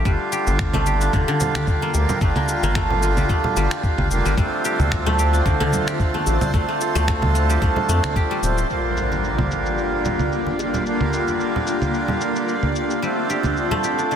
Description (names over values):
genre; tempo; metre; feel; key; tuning
organic downtempo; 111 BPM; 4/4; swing 54% on 16ths; G minor; A4 = 440 Hz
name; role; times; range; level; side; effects
hand-pumped harmonium; accompaniment; 0.0-14.2 s; D3 to F4; -24 LUFS; right 2 dB; sidechain pumping, tape echo
guzheng; arpeggios; 0.0-14.2 s; D3 to G4; -24 LUFS; equal; tape echo
round analog bass; bass; 0.0-8.6 s; D1 to F2; -21 LUFS; equal; sidechain pumping
granular cloud pad; sustained chords; 1.0-14.2 s; Bb3 to Bb5; -27 LUFS; left 2 dB; built-in reverb, sidechain pumping
electronic cabasa, finger snaps and congas; drums; 0.1-14.2 s; none; -26 LUFS; right 1 dB; low-pass filter on perc, soft clipping on snare, low-pass filter on snare
electronic kick drum; drums; 0.1-8.3 s; none; -21 LUFS; equal; none
congas and bongos; percussion; 0.5-13.8 s; none; -30 LUFS; right 2 dB; none
impact; sound effects; 8.7-10.9 s; none; -30 LUFS; left 1 dB; none
room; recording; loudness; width
moderate concert hall reverb, RT60 2.0 s, small room ambience; dense, heavily limited modern master; -18 LUFS; side -8 dB against mid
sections
0.0-8.7 A section; 8.7-14.2 B section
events
impact 8.7-10.9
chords
0.1 Gm7; 4.4 Dm7; 8.7 Gm7; 13.0 Dm7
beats
| 0.05 0.59 1.13 1.67 | 2.21 2.75 3.30 3.84 | 4.38 4.92 5.46 6.00 | 6.54 7.08 7.62 8.16 | 8.70 9.24 9.78 10.32 | 10.86 11.40 11.94 12.48 | 13.03 13.57 14.11